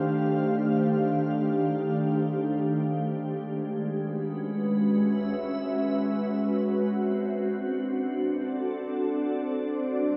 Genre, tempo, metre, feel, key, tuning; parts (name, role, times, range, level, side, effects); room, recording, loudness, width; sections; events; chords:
ambient; free time; A4 = 440 Hz
glassy FM pad; solo; 0.0-10.2 s; Eb3 to F5; -27 LUFS; equal; ensemble chorus, built-in reverb, diffuse ambient delay
wet lush hall reverb, RT60 2.9 s; dreamy mix soaked in reverb; -27 LUFS; mono
0.0-9.9 A section
0.0 Eb; 3.4 C#m; 6.6 D7